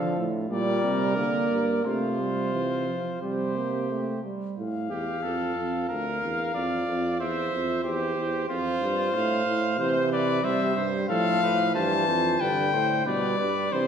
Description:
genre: classical, imitative canzona for brass ensemble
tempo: 91 BPM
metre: 4/4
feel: straight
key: F major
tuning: A4 = 440 Hz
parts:
  - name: clear cornet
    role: melody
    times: 0.0-13.9 s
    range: C5 to A5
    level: -28 LUFS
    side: left 4 dB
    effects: none
  - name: clear trumpet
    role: second line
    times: 0.0-13.9 s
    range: F4 to F5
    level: -31 LUFS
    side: right 4 dB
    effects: none
  - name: warm trombone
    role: accompaniment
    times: 0.0-4.6, 9.8-13.9 s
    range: D3 to Bb3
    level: -29 LUFS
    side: right 3 dB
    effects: none
  - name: bright bass trombone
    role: bass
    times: 0.0-13.9 s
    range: D2 to D3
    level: -29 LUFS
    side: right 2 dB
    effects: none
room: wet scoring stage reverb, RT60 1.5 s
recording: heard from further back in the room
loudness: -24 LUFS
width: side -7 dB against mid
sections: 0.0-4.6 A section; 4.6-13.9 B section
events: none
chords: 0.0 Dm; 0.5 Gm/Bb; 1.8 Csus4; 3.2 C5; 4.6 F; 5.9 Bb/D; 7.2 C/E; 8.5 F; 9.8 C; 11.1 F/A; 12.4 G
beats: 0.50 1.17 | 1.85 2.54 3.22 3.89 | 4.57 5.23 5.89 6.54 | 7.19 7.83 8.49 9.14 | 9.79 10.44 11.09 11.75 | 12.40 13.06 13.72

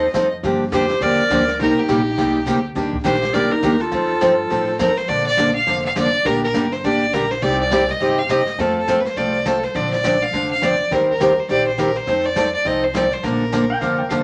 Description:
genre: country, western swing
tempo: 206 BPM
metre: 4/4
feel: swing 60% on 8ths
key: Bb major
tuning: A4 = 441 Hz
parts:
  - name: clear fiddle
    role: melody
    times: 0.0-14.1 s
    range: G4 to F5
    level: -23 LUFS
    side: equal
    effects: none
  - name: mellow clarinet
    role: second line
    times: 0.0-4.8 s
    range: Eb4 to C5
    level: -25 LUFS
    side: equal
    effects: none
  - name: picked steel-string acoustic guitar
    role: accompaniment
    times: 0.0-14.2 s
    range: C3 to C5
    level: -21 LUFS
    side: equal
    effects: none
  - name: upright bass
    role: bass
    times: 0.0-14.2 s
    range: F1 to A2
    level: -33 LUFS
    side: equal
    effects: none
  - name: jazz brush drum kit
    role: drums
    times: 0.1-14.2 s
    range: brushed snare drum, hi-hat, kick drum, snare drum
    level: -32 LUFS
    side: equal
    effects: none
  - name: clean lap steel guitar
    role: second line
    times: 13.7-14.2 s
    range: F5 to G5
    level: -24 LUFS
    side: equal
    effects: none
room: wet small room reverb, RT60 0.5 s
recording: none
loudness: -18 LUFS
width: mono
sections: 0.0-5.1 A section; 5.1-14.2 B section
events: none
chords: 0.4 Gm7; 1.6 Cm7; 3.9 F7; 5.1 Bbmaj7; 6.3 Gm; 7.4 Cm; 8.6 F; 9.8 Bbadd9; 10.9 Eb6; 12.1 F7; 13.2 Bbmaj7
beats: 0.15 | 0.44 0.73 1.02 1.31 | 1.60 1.89 2.18 2.47 | 2.76 3.05 3.34 3.63 | 3.93 4.22 4.51 4.80 | 5.09 5.38 5.67 5.96 | 6.26 6.55 6.84 7.13 | 7.42 7.71 8.01 8.30 | 8.59 8.88 9.17 9.46 | 9.75 10.04 10.33 10.62 | 10.91 11.21 11.49 11.79 | 12.08 12.37 12.66 12.95 | 13.24 13.53 13.82 14.11

